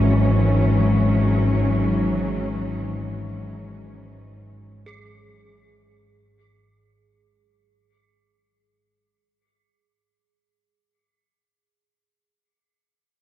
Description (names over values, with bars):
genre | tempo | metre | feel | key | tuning
dark ambient drone | free time | none | none | unclear | A4 = 440 Hz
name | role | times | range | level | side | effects
muted symphonic cello section | sustained chords | 0.0-6.4 s | G#2 to C#4 | -23 LUFS | left 1 dB | none
analog drone | drone | 0.0-6.5 s | G#1 to G#2 | -21 LUFS | equal | chorus
gamelan-type bronze metallophone | arpeggios | 4.9-11.0 s | G#4 | -55 LUFS | right 2 dB | diffuse ambient delay
room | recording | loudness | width
wet huge ambient reverb, RT60 7.7 s | worn, warbling old tape, cassette tape, warbly pitch drift | -18 LUFS | side -13 dB against mid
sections
0.0-6.4 A section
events
fade-out 0.0-6.4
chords
0.0 E/G#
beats
free time